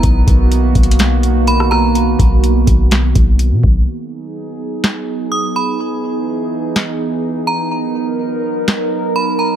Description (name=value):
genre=hip hop, atmospheric cloud-rap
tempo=125 BPM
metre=4/4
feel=half-time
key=B major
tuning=A4 = 440 Hz
part: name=metallic FM bell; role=melody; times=0.0-1.9, 5.3-9.6 s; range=A#5 to D#6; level=-20 LUFS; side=right 2 dB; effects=chorus, tape echo
part: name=warbly tape-like pad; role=sustained chords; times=0.0-9.6 s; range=D#3 to A#4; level=-18 LUFS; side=right 2 dB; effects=chorus, built-in reverb, sidechain pumping
part: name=warm 808-style bass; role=bass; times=0.0-3.9 s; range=B1 to B2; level=-13 LUFS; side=equal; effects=none
part: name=booming analog drum machine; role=drums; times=0.0-8.8 s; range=hi-hat, kick drum, rim click, snare drum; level=-14 LUFS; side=equal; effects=none
room=digital ambience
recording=echo-heavy mix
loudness=-12 LUFS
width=side -10 dB against mid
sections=0.0-3.9 A section; 3.9-9.6 B section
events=none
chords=0.0 Bmaj7; 3.9 G#m7; 5.8 Emaj7; 7.7 Bmaj7